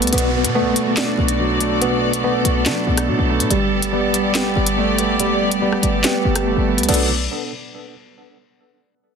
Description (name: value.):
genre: hip hop, drill.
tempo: 142 BPM.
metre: 4/4.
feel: half-time.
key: B minor.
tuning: A4 = 440 Hz.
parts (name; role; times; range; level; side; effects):
dark concert grand piano; accompaniment; 0.0-7.1 s; B2 to G4; -22 LUFS; right 6 dB; low-pass filter.
warm studio string section; sustained chords; 0.0-7.1 s; B2 to D5; -23 LUFS; left 1 dB; none.
tine electric piano; arpeggios; 0.0-7.1 s; G3 to A4; -21 LUFS; left 1 dB; overdrive, fast stereo tremolo, low-pass filter, digital delay.
short 808-style bass; bass; 0.0-7.3 s; F#1 to F#3; -23 LUFS; left 1 dB; none.
drill drum kit; drums; 0.0-7.0 s; crash cymbal, handclaps, hi-hat, rim click, snare drum; -21 LUFS; left 2 dB; none.
downlifter; sound effects; 0.1-3.5 s; none; -29 LUFS; left 2 dB; none.
room: little or no reverb.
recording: dense, heavily limited modern master.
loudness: -16 LUFS.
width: side -6 dB against mid.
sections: 0.1-6.9 A section; 6.9-8.6 B section.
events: none.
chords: 0.1 Bm7; 3.5 Gadd9; 6.9 Bm7.